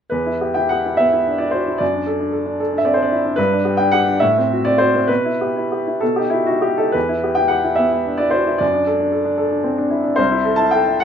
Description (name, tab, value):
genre	classical, romantic character piece for solo piano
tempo	62-79 BPM (dotted quarters)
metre	6/8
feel	rubato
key	E minor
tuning	A4 = 440 Hz
part	clear upright piano	solo	0.1-11.0 s	C2 to A5	-15 LUFS	equal	none
room	light reverb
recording	minimal, uncompressed stereo recording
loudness	-15 LUFS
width	side -8 dB against mid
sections	0.1-11.0 A section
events	none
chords	0.1 Em; 1.8 D/F#; 3.4 G; 4.2 F#dim/A; 5.1 Em/B; 6.0 B; 6.9 Em; 8.6 D/F#; 10.2 Am/C